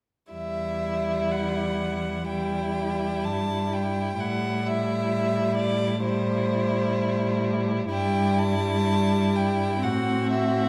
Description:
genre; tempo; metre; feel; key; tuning
classical, slow romantic movement for string quartet; 59-66 BPM; 4/4; rubato; E minor; A4 = 444 Hz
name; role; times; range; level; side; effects
clear violin; melody; 0.3-10.7 s; C5 to A5; -32 LUFS; equal; none
clear violin; second line; 0.3-10.7 s; E4 to F#4; -35 LUFS; equal; none
rich viola; accompaniment; 0.3-10.7 s; G3 to C4; -30 LUFS; equal; none
rich cello; bass; 0.3-10.7 s; E2 to A2; -30 LUFS; equal; none
room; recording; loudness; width
wet recital hall reverb, RT60 1.4 s; dark, warm production; -25 LUFS; mono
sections
0.3-10.7 A section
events
none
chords
0.3 Em; 4.2 Am7; 7.9 Em/G; 9.8 F#dim/A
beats
| 0.32 1.31 2.28 3.25 | 4.20 5.13 6.04 6.98 | 7.91 8.86 9.83

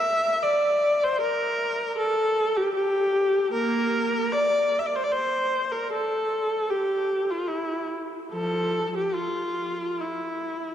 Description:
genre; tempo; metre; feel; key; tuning
classical, free, expressive piece for unaccompanied viola; 76 BPM; 3/4; uneven beats, rubato; unclear; A4 = 440 Hz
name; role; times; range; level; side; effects
warm viola; solo; 0.0-10.7 s; F3 to E5; -23 LUFS; equal; none
room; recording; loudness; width
wet cathedral reverb, RT60 4.8 s; dark, warm production; -23 LUFS; side -10 dB against mid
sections
0.0-10.7 A section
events
none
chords
none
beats
0.43 | 1.22 1.98 2.74 | 3.53 4.34 5.13 | 5.91 6.70 7.50 | 8.35 9.17 10.04

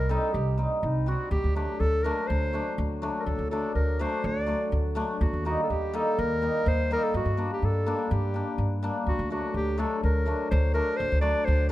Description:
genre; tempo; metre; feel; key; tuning
klezmer; 124 BPM; 4/4; straight; unclear; A4 = 440 Hz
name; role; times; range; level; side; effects
mellow clarinet; melody; 0.0-11.7 s; Eb4 to D5; -30 LUFS; equal; none
cimbalom; accompaniment; 0.0-11.7 s; F#3 to F#4; -30 LUFS; left 1 dB; none
upright bass; bass; 0.0-11.7 s; C2 to G2; -27 LUFS; equal; none
room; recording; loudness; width
light reverb; close, detailed microphones; -24 LUFS; side -15 dB against mid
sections
0.0-9.1 A section; 9.1-11.7 A section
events
none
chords
0.0 Cm; 1.3 D; 5.2 Eb; 7.1 Gm; 9.1 D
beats
0.34 0.83 | 1.32 1.81 2.29 2.78 | 3.27 3.75 4.24 4.72 | 5.21 5.69 6.18 6.66 | 7.14 7.63 8.11 8.59 | 9.07 9.55 10.03 10.51 | 10.98 11.46

